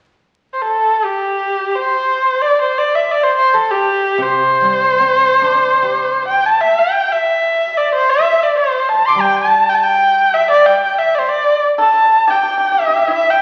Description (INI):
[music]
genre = chinese traditional, Chinese chamber ensemble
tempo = 72-94 BPM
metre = 2/4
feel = rubato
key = C gong mode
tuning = A4 = 440 Hz
[part]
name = warm erhu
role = melody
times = 0.5-13.4 s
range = G4 to D6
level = -14 LUFS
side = equal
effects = none
[part]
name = guzheng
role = accompaniment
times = 4.2-11.1 s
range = C3 to G4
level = -29 LUFS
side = equal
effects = none
[part]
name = pipa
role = second line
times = 11.8-13.4 s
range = E4 to A4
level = -22 LUFS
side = equal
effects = none
[sound]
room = wet recital hall reverb, RT60 1.4 s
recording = very old 78 rpm record, vinyl crackle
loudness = -14 LUFS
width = mono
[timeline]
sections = 0.2-6.6 A section; 6.6-13.4 B section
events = none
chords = none